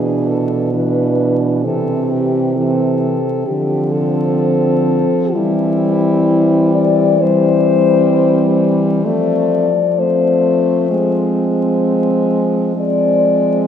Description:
classical, lyrical piece for horn quartet; 65 BPM; 4/4; rubato; A4 = 440 Hz
mellow French horn; melody; 0.0-13.7 s; E4 to D5; -17 LUFS; left 5 dB
mellow French horn; second line; 0.0-13.7 s; C4 to D4; -19 LUFS; right 3 dB
mellow French horn; accompaniment; 0.0-13.7 s; E3 to A3; -19 LUFS; left 1 dB
mellow French horn; bass; 0.0-13.7 s; B2 to F3; -19 LUFS; right 1 dB
wet church reverb, RT60 3.5 s; minimal, uncompressed stereo recording, vinyl crackle; -12 LUFS; side -8 dB against mid
0.0-13.7 A section
0.0 E5/B; 1.6 Am/C; 3.5 Dm7; 5.4 C/E; 9.1 F; 10.9 Fm

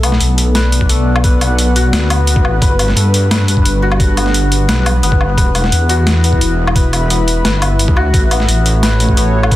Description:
half-time drum and bass; 174 BPM; 4/4; half-time; B minor; A4 = 437 Hz
dark analog pad; sustained chords; 0.0-9.6 s; G3 to B5; -20 LUFS; equal; chorus, sidechain pumping
santur; arpeggios; 0.0-9.6 s; A3 to B4; -19 LUFS; left 3 dB; digital delay
deep soft wobble bass; bass; 0.0-9.6 s; E1 to G2; -13 LUFS; equal; chorus
boom bap sampler-style drum kit; drums; 0.0-9.6 s; hi-hat, snare drum, woodblock; -18 LUFS; equal; overdrive
electronic kick drum; drums; 0.8-9.6 s; -13 LUFS; equal; overdrive
little or no reverb; dense, heavily limited modern master, faint mains hum; -10 LUFS; side -15 dB against mid
0.0-9.6 A section
0.0 Bm; 2.6 G; 5.4 Em; 8.1 A

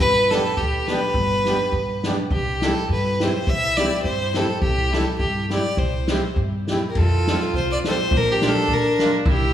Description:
alpine folk, alpine dance band; 104 BPM; 2/4; swing 54% on 8ths, rubato; C major; A4 = 440 Hz
clear fiddle; melody; 0.0-9.5 s; G4 to E5; -22 LUFS; equal
upright bass; bass; 0.0-9.5 s; G1 to G2; -25 LUFS; equal
unplugged drum kit; drums; 0.0-9.4 s; crash cymbal, kick drum, snare drum; -25 LUFS; equal
accordion; accompaniment; 0.3-9.1 s; B3 to Bb4; -28 LUFS; equal; light tremolo tuning
warm viola; second line; 7.0-9.5 s; D4 to F4; -25 LUFS; right 2 dB
wet scoring stage reverb, RT60 2.0 s; recorded in a church or concert hall; -18 LUFS; side -10 dB against mid
0.0-7.0 A section; 7.0-9.5 B section
0.0 G; 2.3 C; 7.0 F; 8.1 Bb

